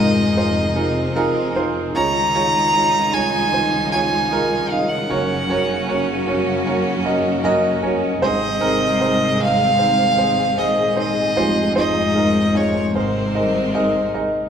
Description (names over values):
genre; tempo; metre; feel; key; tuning
pop; 76 BPM; 4/4; straight; Db major; A4 = 440 Hz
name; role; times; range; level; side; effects
dark violin; melody; 0.0-14.1 s; C5 to Bb5; -20 LUFS; right 1 dB; none
bright chamber cello section; second line; 0.0-14.5 s; Ab2 to Eb4; -24 LUFS; left 1 dB; none
warm concert grand piano; accompaniment; 0.0-14.5 s; F1 to Eb5; -20 LUFS; right 2 dB; none
warm studio string section; sustained chords; 0.0-14.5 s; Db2 to Bb4; -24 LUFS; left 1 dB; none
room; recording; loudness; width
wet large studio reverb, RT60 1.3 s; band playing live in one room; -16 LUFS; side -8 dB against mid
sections
0.0-14.5 A section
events
none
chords
0.0 Fm7; 2.0 Dbadd9; 5.1 Gb; 8.2 Ab; 11.4 Fm7; 12.9 Abadd9